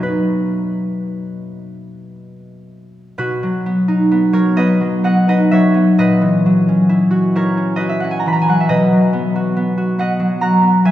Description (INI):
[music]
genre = classical, solo harp piece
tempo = 37-46 BPM (dotted quarters)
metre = 6/8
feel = rubato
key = B major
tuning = A4 = 440 Hz
[part]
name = concert harp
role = solo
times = 0.0-10.9 s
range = A#2 to B5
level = -13 LUFS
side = equal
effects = none
[sound]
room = wet church reverb, RT60 3.2 s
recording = heard from further back in the room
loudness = -13 LUFS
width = side -12 dB against mid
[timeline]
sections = 0.0-3.2 A section; 3.2-10.9 A section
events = none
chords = 0.0 B; 6.0 F#7/A#; 8.7 B